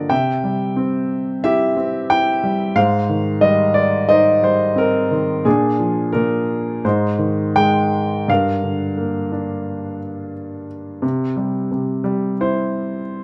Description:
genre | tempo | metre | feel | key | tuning
classical, lyrical solo piano | 89 BPM | 4/4 | rubato | unclear | A4 = 440 Hz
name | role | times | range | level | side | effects
warm grand piano | solo | 0.0-13.2 s | G2 to G5 | -19 LUFS | equal | none
room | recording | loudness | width
light reverb | close, detailed microphones | -18 LUFS | mono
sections
0.0-8.3 A section; 8.3-13.2 B section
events
none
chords
0.1 C; 2.8 Abmaj7; 5.5 Bb7; 6.8 Ab; 8.3 Gm7; 11.0 C

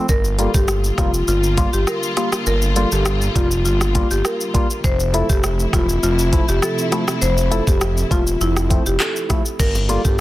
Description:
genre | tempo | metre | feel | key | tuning
dancehall | 101 BPM | 4/4 | straight | unclear | A4 = 439 Hz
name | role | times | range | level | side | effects
percussive organ stab | accompaniment | 0.0-10.0 s | F3 to F4 | -24 LUFS | left 1 dB | chorus, sidechain pumping
marimba with medium mallets | melody | 0.1-10.2 s | E4 to C5 | -22 LUFS | left 1 dB | tape echo
warm studio string section | sustained chords | 0.1-9.6 s | C3 to F4 | -26 LUFS | equal | sidechain pumping
fat analog bass | bass | 0.1-10.2 s | E1 to G1 | -20 LUFS | equal | none
afro-pop drum kit | drums | 0.1-10.2 s | crash cymbal, handclaps, hi-hat, kick drum, rim click, shaker | -20 LUFS | equal | soft clipping on snare
bongos | percussion | 9.8-10.0 s | none | -36 LUFS | right 1 dB | none
room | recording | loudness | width
little or no reverb | dense, heavily limited modern master | -16 LUFS | side -16 dB against mid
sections
0.1-9.6 A section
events
none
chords
0.1 Gm7; 4.8 Fmaj7; 9.6 Gm7

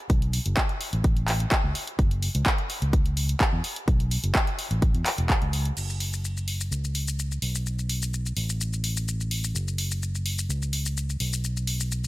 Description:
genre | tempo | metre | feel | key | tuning
piano house | 127 BPM | 4/4 | straight | unclear | A4 = 443 Hz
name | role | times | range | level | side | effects
fingered electric bass | bass | 0.1-12.1 s | E1 to E2 | -27 LUFS | equal | sidechain pumping, low-pass filter
electronic kick drum | drums | 0.1-5.4 s | none | -23 LUFS | equal | none
punchy analog drum machine | drums | 0.1-12.1 s | crash cymbal, handclaps, hi-hat, shaker | -29 LUFS | left 1 dB | none
room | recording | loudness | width
digital ambience | none | -24 LUFS | side -18 dB against mid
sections
0.0-5.8 A section; 5.8-12.1 B section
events
none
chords
none

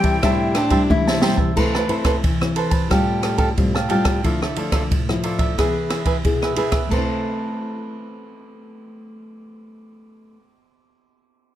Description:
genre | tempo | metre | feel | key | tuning
samba and choro | 90 BPM | 4/4 | straight | A minor | A4 = 440 Hz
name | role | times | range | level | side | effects
concert flute | melody | 0.0-0.8 s | G5 | -26 LUFS | left 4 dB | slapback echo
lap resonator guitar | second line | 0.0-1.5 s | D4 to G4 | -22 LUFS | left 2 dB | none
cavaquinho | accompaniment | 0.0-10.4 s | E4 to A5 | -24 LUFS | right 5 dB | none
nylon-string guitar | accompaniment | 0.0-10.5 s | A2 to B4 | -23 LUFS | left 2 dB | none
open jazz drum kit | drums | 0.0-7.1 s | crash cymbal, kick drum, ride cymbal, rim click, snare drum, toms | -21 LUFS | equal | none
room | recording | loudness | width
moderate studio reverb, RT60 0.5 s | none | -17 LUFS | side -12 dB against mid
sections
0.0-1.6 A section; 1.6-6.9 B section; 6.9-9.6 C section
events
drum fill 0.9-1.6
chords
0.0 Am7; 1.6 Amadd9; 2.9 Fadd9/A; 4.2 Dmadd9; 5.6 E; 6.9 Amadd9

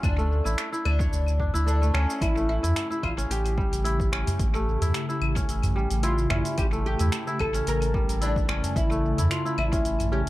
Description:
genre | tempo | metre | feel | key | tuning
organic downtempo | 110 BPM | 4/4 | swing 54% on 16ths | unclear | A4 = 440 Hz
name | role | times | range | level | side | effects
oud | melody | 0.0-10.2 s | C#4 to Bb4 | -30 LUFS | left 1 dB | tape echo
kora | arpeggios | 0.0-10.3 s | G3 to C#5 | -32 LUFS | equal | tape echo
warm sub bass | bass | 0.0-10.3 s | A1 to E2 | -25 LUFS | equal | sidechain pumping
deep house drum kit | drums | 0.0-10.3 s | claves, finger snaps, hi-hat, shaker | -34 LUFS | left 1 dB | overdrive, tape echo
electronic kick drum | drums | 0.0-9.8 s | none | -29 LUFS | equal | overdrive
udu | percussion | 0.0-10.1 s | none | -32 LUFS | right 1 dB | none
ethereal airy pad | sustained chords | 2.8-10.3 s | C#3 to A5 | -33 LUFS | left 1 dB | ensemble chorus, built-in reverb, vintage 12-bit sampler grit, sidechain pumping
room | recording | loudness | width
light reverb | echo-heavy mix | -23 LUFS | side -17 dB against mid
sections
0.0-2.2 A section; 2.2-10.3 A section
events
band accent 1.9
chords
0.0 D5; 2.2 A7

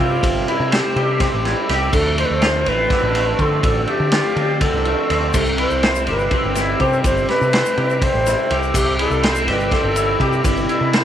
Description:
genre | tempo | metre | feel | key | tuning
psychedelic rock | 246 BPM (eighths) | 7/8 | straight | unclear | A4 = 442 Hz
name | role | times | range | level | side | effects
breathy mellow silver concert flute | melody | 0.0-11.0 s | E4 to C5 | -21 LUFS | equal | tape echo
percussive tonewheel organ | sustained chords | 0.0-11.0 s | F3 to E5 | -28 LUFS | right 13 dB | slow rotary speaker
twangy electric guitar | riff | 0.0-11.0 s | D2 to C5 | -21 LUFS | left 1 dB | flanger, double-tracked left and right
picked electric bass | bass | 0.0-11.0 s | G1 to D3 | -22 LUFS | equal | none
vintage drum kit | drums | 0.2-11.0 s | crash cymbal, kick drum, ride cymbal, snare drum | -20 LUFS | equal | none
egg shaker | percussion | 5.3-11.0 s | none | -34 LUFS | left 16 dB | none
room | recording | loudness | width
light reverb, small room ambience | 1960s-style stereo with parts hard left and right | -15 LUFS | side -10 dB against mid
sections
0.0-11.0 A section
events
none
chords
0.0 C6; 1.9 Dm7; 5.3 C6

